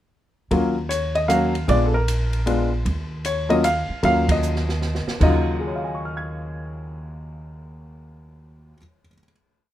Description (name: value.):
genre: jazz piano trio.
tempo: 153 BPM.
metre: 3/4.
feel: swing 65% on 8ths.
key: Eb minor.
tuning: A4 = 440 Hz.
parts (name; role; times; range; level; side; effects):
warm baby grand piano; melody; 0.5-9.3 s; Eb2 to Ab6; -21 LUFS; left 1 dB; none.
upright bass; bass; 0.5-8.7 s; Bb1 to Eb2; -24 LUFS; right 1 dB; none.
open jazz drum kit; drums; 0.5-5.3 s; crash cymbal, hi-hat, kick drum, ride cymbal, snare drum; -30 LUFS; right 2 dB; none.
room: light reverb.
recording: minimal, uncompressed stereo recording.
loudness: -19 LUFS.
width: side -13 dB against mid.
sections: 0.5-5.2 A section; 5.2-7.6 final chord.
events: band accent 4.2; drum fill 4.4-5.2.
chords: 0.5 Ebm9; 1.7 Bb7b9; 2.9 Ebm9.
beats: | 0.51 0.90 1.29 | 1.68 2.07 2.46 | 2.86 3.25 3.64 | 4.03 4.42 4.82 | 5.21 5.60 5.99 | 6.38 6.77 7.17.